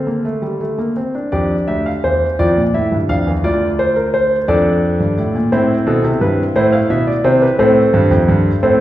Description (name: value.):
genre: classical, baroque-style 4-part fugue for grand piano.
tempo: 57 BPM (dotted quarters).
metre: 6/8.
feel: straight.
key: D minor.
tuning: A4 = 437 Hz.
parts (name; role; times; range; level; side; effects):
warm concert grand piano; solo; 0.0-8.8 s; D2 to F5; -13 LUFS; equal; none.
room: wet recital hall reverb, RT60 1.6 s.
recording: heard from further back in the room.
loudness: -13 LUFS.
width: side -14 dB against mid.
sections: 0.0-1.3 A section; 1.3-8.8 B section.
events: none.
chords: 0.0 Dm; 2.4 Dm/F; 3.4 Dm; 4.5 Dm/F; 5.5 Am.